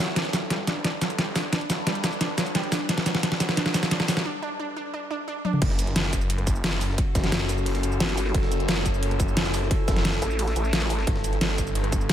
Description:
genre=dark technical drum and bass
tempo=176 BPM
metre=4/4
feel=straight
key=F# phrygian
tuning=A4 = 441 Hz
part: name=metallic inharmonic drone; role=sustained chords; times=0.0-12.1 s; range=F#3 to B4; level=-32 LUFS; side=left 1 dB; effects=chorus, built-in reverb, phaser, sidechain pumping
part: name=wide unison pluck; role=arpeggios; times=0.0-5.5 s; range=F#3 to D4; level=-31 LUFS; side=right 4 dB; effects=sidechain pumping, dub echo
part: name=snarling distorted saw bass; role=bass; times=0.0-12.1 s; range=F#1 to A1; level=-29 LUFS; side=equal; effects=distortion, tube saturation, high-pass filter
part: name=dubstep drum kit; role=drums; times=0.1-12.1 s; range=cabasa, crash cymbal, hi-hat, rim click, snare drum, toms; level=-25 LUFS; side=equal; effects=overdrive
part: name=breakbeat sampler-style drum kit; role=drums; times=5.6-12.1 s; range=hi-hat, ride cymbal, snare drum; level=-38 LUFS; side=equal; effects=none
part: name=electronic kick drum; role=drums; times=5.6-12.0 s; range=none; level=-26 LUFS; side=equal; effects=overdrive
part: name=vowel-sweep wobble bass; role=bass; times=8.0-11.1 s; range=G1 to A1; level=-26 LUFS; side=equal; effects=chorus
room=light reverb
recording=none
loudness=-22 LUFS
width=side -10 dB against mid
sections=0.0-5.6 A section; 5.6-12.1 B section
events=build-up 0.0-5.6; drum fill 0.0-4.3, 5.4; break 4.3-5.6; drop 5.6-12.1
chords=0.2 G; 5.6 F#m7; 11.1 G

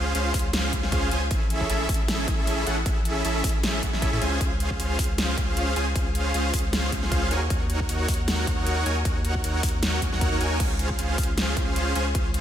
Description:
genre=future bass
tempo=155 BPM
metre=4/4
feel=swing 54% on 16ths, half-time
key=Db major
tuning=A4 = 440 Hz
part: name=supersaw chords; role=riff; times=0.0-12.4 s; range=Db4 to Ab5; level=-27 LUFS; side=equal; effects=cassette tape, sidechain pumping, ping-pong delay
part: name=saturated sub bass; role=bass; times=0.0-12.4 s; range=A1 to A2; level=-28 LUFS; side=equal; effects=sidechain pumping
part: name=big-room dance drum kit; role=drums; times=0.1-12.4 s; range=crash cymbal, hi-hat, snare drum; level=-30 LUFS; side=equal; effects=none
part: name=electronic kick drum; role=drums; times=0.3-12.2 s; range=none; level=-27 LUFS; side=equal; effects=none
room=moderate lush hall reverb, RT60 1.8 s, digital ambience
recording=dreamy mix soaked in reverb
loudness=-22 LUFS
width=side -10 dB against mid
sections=0.0-12.4 A section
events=none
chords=0.0 Dbmaj7; 1.3 Amaj7; 4.2 Dbmaj7; 7.3 Ebm7; 10.6 Dbmaj7

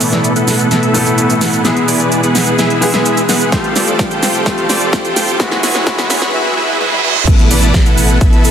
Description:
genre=EDM, festival progressive house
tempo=128 BPM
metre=4/4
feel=straight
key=unclear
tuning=A4 = 436 Hz
part: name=bright concert grand piano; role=accompaniment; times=0.0-7.3 s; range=A2 to A4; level=-18 LUFS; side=left 2 dB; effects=sidechain pumping, digital delay
part: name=muted chamber string section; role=sustained chords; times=0.0-8.5 s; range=B2 to A4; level=-21 LUFS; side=right 1 dB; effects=sidechain pumping, low-pass filter
part: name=dense compressed supersaw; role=riff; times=0.0-8.5 s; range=B3 to G5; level=-15 LUFS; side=equal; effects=sidechain pumping, low-pass filter, digital delay
part: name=big-room dance drum kit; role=drums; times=0.0-8.5 s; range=crash cymbal, hi-hat, shaker, snare drum, toms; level=-17 LUFS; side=right 1 dB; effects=none
part: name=riser, reverse cymbal and impact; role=sound effects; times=3.8-8.5 s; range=none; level=-22 LUFS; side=right 4 dB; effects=none
part: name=electronic kick drum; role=drums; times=3.5-8.3 s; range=none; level=-12 LUFS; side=equal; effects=overdrive
part: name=saturated sub bass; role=bass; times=7.3-8.5 s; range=A1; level=-14 LUFS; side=equal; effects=sidechain pumping
room=moderate huge ambient reverb, RT60 6.7 s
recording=dense, heavily limited modern master, high-pass filter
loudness=-10 LUFS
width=side -8 dB against mid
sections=0.0-7.3 A section; 7.3-8.5 B section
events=build-up 0.0-7.3; drum fill 0.0-6.3, 6.8-7.3; filter sweep on supersaw synth 0.0-7.3; filter sweep on string section 0.0-7.3; filter sweep 0.0-7.3; reverse cymbal 6.3-7.3; drop 7.3-8.5; impact 7.3-8.5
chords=0.0 Asus2; 1.6 E; 3.5 Fadd9; 5.4 C#m; 7.3 Asus2

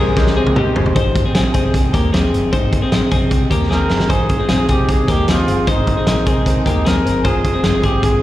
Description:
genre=jangly indie pop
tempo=152 BPM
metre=4/4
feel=straight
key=Ab major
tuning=A4 = 440 Hz
part: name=breathy trumpet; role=melody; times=0.0-0.6, 3.7-8.2 s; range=Eb4 to Bb4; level=-22 LUFS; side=right 1 dB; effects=slapback echo
part: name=clear upright piano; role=accompaniment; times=0.0-1.0, 4.1-8.2 s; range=Ab3 to Bb4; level=-26 LUFS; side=equal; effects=none
part: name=crunchy overdriven guitar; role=accompaniment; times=0.0-8.2 s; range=F3 to Ab4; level=-27 LUFS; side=right 5 dB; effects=slapback echo
part: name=lush unison pad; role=sustained chords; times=0.0-0.9 s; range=C5 to D#6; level=-35 LUFS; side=equal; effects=none
part: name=twelve-string electric guitar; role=arpeggios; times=0.0-8.2 s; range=Bb3 to C5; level=-19 LUFS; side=left 3 dB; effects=spring reverb, slapback echo, ping-pong delay
part: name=vintage muted picked electric bass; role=bass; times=0.0-8.2 s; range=F1 to Eb2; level=-20 LUFS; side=equal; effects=none
part: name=loose indie drum kit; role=drums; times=0.2-8.1 s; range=hi-hat, kick drum, snare drum, toms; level=-17 LUFS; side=equal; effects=none
room=light reverb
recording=live gig heard through the venue's PA, recital hall reverb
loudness=-13 LUFS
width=side -14 dB against mid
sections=1.0-4.1 A section; 4.1-8.2 B section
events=drum fill 0.2-1.0, 3.7-4.1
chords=0.0 Abmaj7; 4.1 Ab; 7.2 Fm

